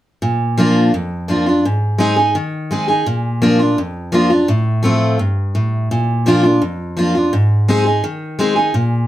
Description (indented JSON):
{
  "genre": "bluegrass",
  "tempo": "169 BPM",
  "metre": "4/4",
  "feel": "straight",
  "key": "Bb mixolydian",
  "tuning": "A4 = 440 Hz",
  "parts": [
    { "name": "picked steel-string acoustic guitar", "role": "solo", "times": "0.2-9.1 s", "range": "F2 to Ab4", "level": "-14 LUFS", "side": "equal", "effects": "none" }
  ],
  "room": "wet studio ambience, RT60 0.5 s",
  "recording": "heard from further back in the room",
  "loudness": "-13 LUFS",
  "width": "side -13 dB against mid",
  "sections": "0.2-9.1 A section",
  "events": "none",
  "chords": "0.2 Bb; 1.6 Ab; 3.1 Bb; 4.5 F/A; 5.9 Bb; 7.3 Ab",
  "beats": "| 0.22 0.57 0.93 1.28 | 1.64 2.00 2.35 2.71 | 3.06 3.42 3.77 4.13 | 4.49 4.84 5.20 5.55 | 5.91 6.26 6.62 6.97 | 7.33 7.68 8.04 8.39 | 8.75"
}